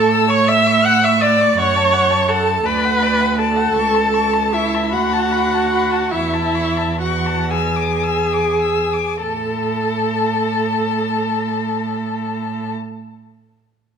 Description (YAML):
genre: classical, slow romantic movement for string quartet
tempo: 33-57 BPM (dotted quarters)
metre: 6/8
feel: rubato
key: A major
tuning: A4 = 444 Hz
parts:
  - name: rich violin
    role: melody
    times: 0.0-12.7 s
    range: D5 to E6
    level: -23 LUFS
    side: left 8 dB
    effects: none
  - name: rich violin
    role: second line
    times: 0.0-12.7 s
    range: A4 to F#6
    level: -22 LUFS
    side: left 4 dB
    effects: none
  - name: warm viola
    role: accompaniment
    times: 0.0-12.7 s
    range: E4 to F#5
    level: -18 LUFS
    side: right 2 dB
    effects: none
  - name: rich cello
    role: bass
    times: 0.0-12.7 s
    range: C#2 to A2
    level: -21 LUFS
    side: right 5 dB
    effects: none
room: wet recital hall reverb, RT60 1.4 s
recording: minimal, uncompressed stereo recording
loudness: -15 LUFS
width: side -7 dB against mid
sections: 0.0-9.2 A section; 9.2-12.7 B section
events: slowing down 2.6-9.2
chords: 0.0 A; 1.6 F#m; 2.6 Bm/D; 3.8 A/C#; 4.9 Bm7/D; 6.1 A/E; 7.5 E7; 9.2 N.C.